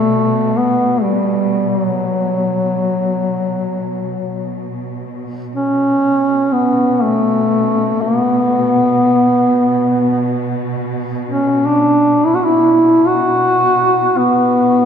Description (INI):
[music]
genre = caucasian folk, Caucasian lament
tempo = free time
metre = none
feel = none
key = B minor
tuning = A4 = 439 Hz
[part]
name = dark duduk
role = melody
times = 0.0-14.9 s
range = F#3 to F#4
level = -13 LUFS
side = equal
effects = none
[part]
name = warm symphonic cello section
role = drone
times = 0.0-14.9 s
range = B2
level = -24 LUFS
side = right 2 dB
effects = none
[sound]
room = wet cathedral reverb, RT60 4.5 s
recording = recorded in a church or concert hall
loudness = -12 LUFS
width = side -8 dB against mid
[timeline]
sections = 0.0-14.9 A section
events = none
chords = none